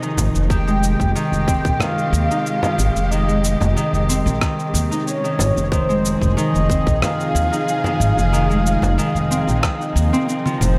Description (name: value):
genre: organic downtempo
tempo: 92 BPM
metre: 4/4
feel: straight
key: F minor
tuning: A4 = 440 Hz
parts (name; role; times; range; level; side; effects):
- rich studio string section; sustained chords; 0.0-10.8 s; C3 to Ab4; -29 LUFS; equal; vintage 12-bit sampler grit, sidechain pumping
- Celtic harp; arpeggios; 0.0-10.8 s; Eb3 to Eb4; -24 LUFS; equal; tape echo
- dusty soul sampler-style drum kit; drums; 0.0-10.8 s; rim click, shaker, toms; -28 LUFS; equal; none
- upright bass; bass; 0.2-10.8 s; F1 to Eb2; -22 LUFS; equal; sidechain pumping
- frame drum; percussion; 0.2-10.7 s; none; -29 LUFS; equal; analog delay
- breathy flute-like synth lead; melody; 0.5-10.8 s; C5 to G5; -26 LUFS; equal; analog chorus, tape echo
- electronic kick drum; drums; 0.5-9.8 s; none; -23 LUFS; equal; none
room: light reverb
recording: echo-heavy mix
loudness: -19 LUFS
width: mono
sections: 0.0-10.8 A section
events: drum fill 10.4-10.8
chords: 0.0 Fm7; 0.5 Abmaj7/F; 5.7 Fm7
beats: | 0.50 1.15 1.80 2.46 | 3.11 3.76 4.41 5.07 | 5.72 6.37 7.02 7.67 | 8.33 8.98 9.63 10.28